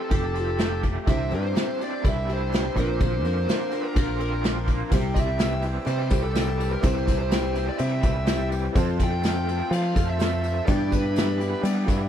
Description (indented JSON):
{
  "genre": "folk rock and heartland rock",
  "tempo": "125 BPM",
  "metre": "4/4",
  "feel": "straight",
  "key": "C mixolydian",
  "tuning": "A4 = 440 Hz",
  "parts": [
    { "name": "bluesy overdriven lead guitar", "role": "melody", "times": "0.0-11.6 s", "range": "A4 to G5", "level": "-30 LUFS", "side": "right 1 dB", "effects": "distortion" },
    { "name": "picked steel-string acoustic guitar", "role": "accompaniment", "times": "0.0-12.1 s", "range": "G2 to Bb4", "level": "-32 LUFS", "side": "left 8 dB", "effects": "none" },
    { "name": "warm baby grand piano", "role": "accompaniment", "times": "0.0-12.1 s", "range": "D4 to C5", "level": "-38 LUFS", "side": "right 18 dB", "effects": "none" },
    { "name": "raw garage guitar", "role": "riff", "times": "0.0-12.1 s", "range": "F2 to G4", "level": "-33 LUFS", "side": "right 3 dB", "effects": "overdrive, tremolo" },
    { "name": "picked electric bass", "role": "bass", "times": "0.1-12.1 s", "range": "F1 to G3", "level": "-26 LUFS", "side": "equal", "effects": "none" },
    { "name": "soft brush drum kit", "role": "drums", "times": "0.1-12.0 s", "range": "crash cymbal, kick drum, ride cymbal, snare drum", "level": "-26 LUFS", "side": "equal", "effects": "none" },
    { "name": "accordion", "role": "sustained chords", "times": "1.1-12.1 s", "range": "F4 to E6", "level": "-38 LUFS", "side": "right 6 dB", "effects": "light tremolo tuning" },
    { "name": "tambourine", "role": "percussion", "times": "4.9-12.0 s", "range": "none", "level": "-48 LUFS", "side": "right 24 dB", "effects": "none" }
  ],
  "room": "little or no reverb",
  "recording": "none",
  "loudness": "-22 LUFS",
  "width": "side -10 dB against mid",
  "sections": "0.0-4.9 A section; 4.9-12.1 B section",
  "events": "none",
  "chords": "0.0 Fadd9; 1.1 Cadd9; 2.8 Bbadd9; 4.9 C; 8.8 F; 10.7 G6"
}